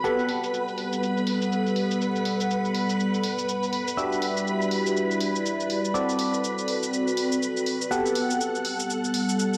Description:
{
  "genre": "piano house",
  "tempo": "122 BPM",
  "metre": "4/4",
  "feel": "swing 58% on 16ths",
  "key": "G major",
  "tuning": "A4 = 438 Hz",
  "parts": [
    { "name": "string machine, violins", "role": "sustained chords", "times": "0.0-9.6 s", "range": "A4 to B5", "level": "-33 LUFS", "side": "equal", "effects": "ensemble chorus" },
    { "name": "barking FM electric piano", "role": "riff", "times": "0.0-9.6 s", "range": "B3 to F#5", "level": "-30 LUFS", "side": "equal", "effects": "phaser, digital delay" },
    { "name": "electronic shaker and hi-hat", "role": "drums", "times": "0.0-9.6 s", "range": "none", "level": "-36 LUFS", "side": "equal", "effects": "low-pass filter on cymbals, small room reverb, low-pass filter on perc, low-pass filter on hats" },
    { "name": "warbly tape-like pad", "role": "texture", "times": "0.0-9.6 s", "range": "G3 to F#5", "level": "-31 LUFS", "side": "equal", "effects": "chorus, built-in reverb" }
  ],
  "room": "moderate plate reverb, RT60 2.5 s",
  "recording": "dark, warm production",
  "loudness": "-26 LUFS",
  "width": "mono",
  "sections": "0.0-9.6 A section",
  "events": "none",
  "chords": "0.0 Gmaj9; 4.0 Em9; 5.9 D7; 7.9 Gmaj9",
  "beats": "| 0.04 0.53 1.02 1.51 | 2.01 2.50 2.99 3.48 | 3.97 4.47 4.96 5.45 | 5.94 6.43 6.92 7.42 | 7.91 8.40 8.89 9.38"
}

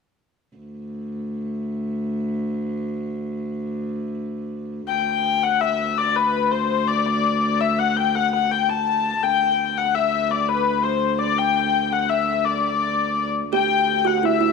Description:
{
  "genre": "medieval dance",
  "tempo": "111 BPM (dotted quarters)",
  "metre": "6/8",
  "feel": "straight",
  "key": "D mixolydian",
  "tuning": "A4 = 439 Hz",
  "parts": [
    { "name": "dark viola da gamba", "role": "drone", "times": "0.6-14.5 s", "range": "D2", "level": "-26 LUFS", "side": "right 1 dB", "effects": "none" },
    { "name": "dark hurdy-gurdy", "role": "melody", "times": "4.9-14.5 s", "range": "B4 to A5", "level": "-19 LUFS", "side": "left 8 dB", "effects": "none" },
    { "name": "kalimba", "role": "second line", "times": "13.5-14.5 s", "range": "E4 to G4", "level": "-21 LUFS", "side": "right 15 dB", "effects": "none" }
  ],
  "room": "wet echo chamber reverb, RT60 1.8 s, studio reverb",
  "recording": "1960s-style stereo with parts hard left and right",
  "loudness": "-19 LUFS",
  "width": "side -4 dB against mid",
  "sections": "0.6-4.9 A section; 4.9-13.5 B section; 13.5-14.5 B section",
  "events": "none",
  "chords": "none",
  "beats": "| 0.56 1.10 | 1.64 2.18 | 2.72 3.27 | 3.81 4.35 | 4.89 5.43 | 5.97 6.51 | 7.05 7.59 | 8.13 8.67 | 9.21 9.75 | 10.29 10.83 | 11.37 11.90 | 12.45 12.98 | 13.52 14.06"
}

